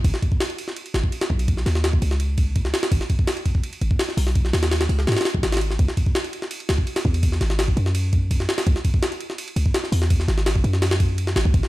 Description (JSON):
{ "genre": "drum and bass, jungle", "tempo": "167 BPM", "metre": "4/4", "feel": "straight", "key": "C# minor", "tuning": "A4 = 440 Hz", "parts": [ { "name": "warm 808-style bass", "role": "bass", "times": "0.0-11.6 s", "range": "G#1 to G#2", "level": "-21 LUFS", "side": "equal", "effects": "none" }, { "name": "jungle sampler-style drum kit", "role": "drums", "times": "0.0-11.7 s", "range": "hi-hat, kick drum, ride cymbal, snare drum", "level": "-21 LUFS", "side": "equal", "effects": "studio reverb" } ], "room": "little or no reverb", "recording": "dark, warm production", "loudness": "-19 LUFS", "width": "side -17 dB against mid", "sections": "0.0-11.7 A section", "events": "none", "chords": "none" }